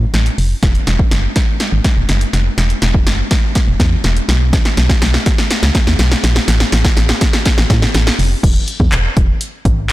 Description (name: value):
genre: dance-pop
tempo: 123 BPM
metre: 4/4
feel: straight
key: E major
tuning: A4 = 442 Hz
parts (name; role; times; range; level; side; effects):
- organ-like FM bass; bass; 0.0-9.9 s; E1 to A2; -14 LUFS; equal; sidechain pumping
- punchy analog drum machine; drums; 0.1-9.9 s; crash cymbal, handclaps, hi-hat, kick drum, snare drum; -13 LUFS; equal; none
room: little or no reverb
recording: blown-out, overdriven recording, overdrive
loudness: -11 LUFS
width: side -16 dB against mid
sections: 0.0-8.4 A section; 8.4-9.9 B section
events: build-up 0.0-8.4; drum fill 0.0-8.4; drop 8.4-9.9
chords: none